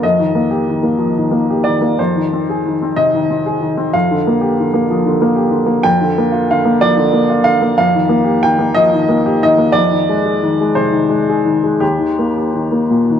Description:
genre	neoclassical minimalist piano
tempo	61 BPM (dotted quarters)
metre	6/8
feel	rubato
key	unclear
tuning	A4 = 445 Hz
part	clear upright piano	solo	0.0-13.2 s	Eb2 to G5	-12 LUFS	equal	none
room	moderate plate reverb, RT60 3.5 s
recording	heard from further back in the room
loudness	-12 LUFS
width	side -8 dB against mid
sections	0.0-13.2 A section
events	none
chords	0.0 Ebadd9/F; 2.0 Fm7; 3.9 Gm/F; 7.8 Ebadd9/F; 9.8 Fm7; 11.8 Eb

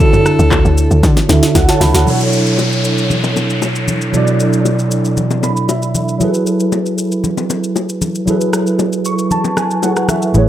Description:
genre	amapiano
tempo	116 BPM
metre	4/4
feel	straight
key	unclear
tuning	A4 = 442 Hz
part	clear alto saxophone	melody	0.0-1.3 s	A4	-17 LUFS	equal	digital delay
part	mellow tine electric piano	accompaniment	0.0-10.5 s	B2 to C#6	-14 LUFS	right 2 dB	ensemble chorus
part	afro-pop drum kit	drums	0.0-10.5 s	handclaps, hi-hat, kick drum, rim click, shaker, snare drum, toms	-17 LUFS	equal	none
part	congas and bongos	percussion	0.0-10.5 s	none	-21 LUFS	left 5 dB	none
part	deep log drum bass	bass	0.4-2.1 s	C#2 to D3	-12 LUFS	equal	none
part	downlifter	sound effects	2.1-6.2 s	none	-22 LUFS	left 1 dB	none
part	vintage muted fingered electric bass	bass	10.3-10.5 s	A1	-10 LUFS	equal	none
room	light reverb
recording	none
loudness	-12 LUFS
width	side -12 dB against mid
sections	0.0-2.1 A section; 2.1-10.5 B section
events	drop 0.0-2.1; drum fill 1.0-2.1; tine electric piano fill 1.0-2.1, 5.2-6.2, 8.8-10.3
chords	0.0 Dmaj9; 2.1 Bm11; 6.2 F#m11

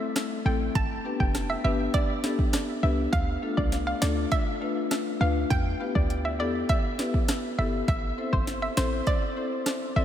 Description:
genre	dancehall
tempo	101 BPM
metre	4/4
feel	straight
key	unclear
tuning	A4 = 439 Hz
part	afro-pop drum kit	drums	0.2-9.8 s	hi-hat, kick drum, rim click, snare drum	-28 LUFS	equal	none
part	hollow square pluck	melody	0.5-10.0 s	C5 to A5	-31 LUFS	equal	chorus, ping-pong delay
part	marimba with medium mallets	accompaniment	0.5-10.0 s	A3 to D5	-30 LUFS	left 3 dB	sidechain pumping
part	short 808-style bass	bass	0.5-10.0 s	F1 to E2	-28 LUFS	equal	none
room	moderate cathedral reverb, RT60 5.0 s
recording	dreamy mix soaked in reverb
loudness	-24 LUFS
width	side -10 dB against mid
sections	0.0-10.0 A section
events	none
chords	0.0 Am; 0.8 G; 3.1 Dm; 5.5 Em; 7.9 Am

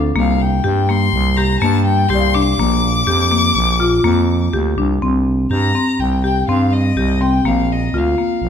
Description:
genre	contemporary instrumental, chamber music in an uneven meter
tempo	124 BPM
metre	5/4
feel	straight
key	C minor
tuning	A4 = 438 Hz
part	marimba with hard mallets	arpeggios	0.0-8.5 s	Bb3 to G4	-18 LUFS	left 3 dB	none
part	growling FM bass	bass	0.0-8.5 s	Bb1 to G2	-17 LUFS	right 2 dB	none
part	rich violin	melody	0.2-8.5 s	Eb5 to D6	-19 LUFS	left 6 dB	none
part	large celesta	texture	2.1-2.8 s	D5 to F5	-26 LUFS	left 5 dB	none
room	wet recital hall reverb, RT60 1.5 s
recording	minimal, uncompressed stereo recording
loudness	-13 LUFS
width	side -8 dB against mid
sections	0.0-5.0 A section; 5.0-8.5 B section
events	none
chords	0.2 Csus2; 2.6 Bb6; 5.0 Cm7; 7.4 Gm7/Bb (rootless)

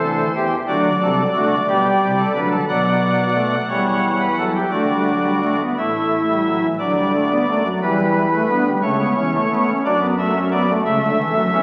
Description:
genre	classical, baroque-style 4-part fugue for pipe organ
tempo	59 BPM (dotted quarters)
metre	6/8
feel	straight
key	D major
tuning	A4 = 438 Hz
part	pipe organ, cornet	solo	0.0-11.6 s	A1 to F#5	-18 LUFS	equal	none
room	wet recital hall reverb, RT60 1.5 s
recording	very old 78 rpm record, vinyl crackle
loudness	-18 LUFS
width	mono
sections	0.0-6.8 A section; 6.8-11.6 B section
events	none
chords	0.0 Am; 0.7 D; 1.7 G/B; 2.7 Bm; 3.7 Em; 4.7 Asus4/D; 5.8 A5; 6.8 D; 7.8 Em; 8.8 A/C#; 9.9 D/F#; 10.9 A/C#

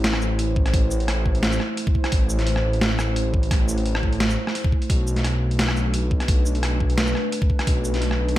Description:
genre	half-time drum and bass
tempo	173 BPM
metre	4/4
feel	swing 54% on 16ths, half-time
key	unclear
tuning	A4 = 439 Hz
part	dark analog pad	sustained chords	0.0-8.4 s	A3 to C5	-28 LUFS	right 1 dB	chorus, sidechain pumping
part	dark detuned saw bass	bass	0.0-8.4 s	A1 to B1	-23 LUFS	equal	tube saturation
part	boom bap sampler-style drum kit	drums	0.0-8.4 s	hi-hat, rim click, shaker, snare drum	-26 LUFS	equal	none
part	electronic kick drum	drums	0.6-7.7 s	none	-20 LUFS	equal	overdrive
room	little or no reverb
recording	none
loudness	-19 LUFS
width	side -14 dB against mid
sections	0.0-8.4 A section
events	none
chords	0.0 Am; 4.9 Bm7

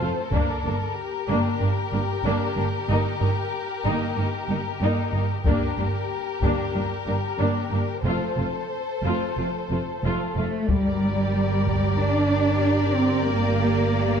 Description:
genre	cinematic, epic orchestral film score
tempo	93 BPM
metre	4/4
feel	straight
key	G minor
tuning	A4 = 440 Hz
part	warm symphonic violin section	second line	0.0-14.2 s	G4 to C5	-29 LUFS	left 5 dB	none
part	clear symphonic viola section	accompaniment	0.0-14.2 s	A3 to G4	-29 LUFS	equal	none
part	dark symphonic double bass section	bass	0.0-14.2 s	F1 to G1	-27 LUFS	right 3 dB	none
part	warm symphonic cello section	bass	0.0-14.2 s	F2 to D4	-26 LUFS	right 1 dB	none
part	taiko ensemble	drums	0.3-1.6, 5.5-6.7, 10.7-12.0 s	none	-26 LUFS	left 2 dB	none
part	warm symphonic violin section	melody	10.7-14.2 s	D5	-30 LUFS	left 5 dB	none
room	moderate scoring stage reverb, RT60 1.6 s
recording	none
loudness	-21 LUFS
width	side -7 dB against mid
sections	0.0-10.7 A section; 10.7-14.2 B section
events	build-up 0.0-10.7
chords	0.3 Gm; 2.9 Eb/G; 5.5 Gm; 8.1 F; 10.7 Gm

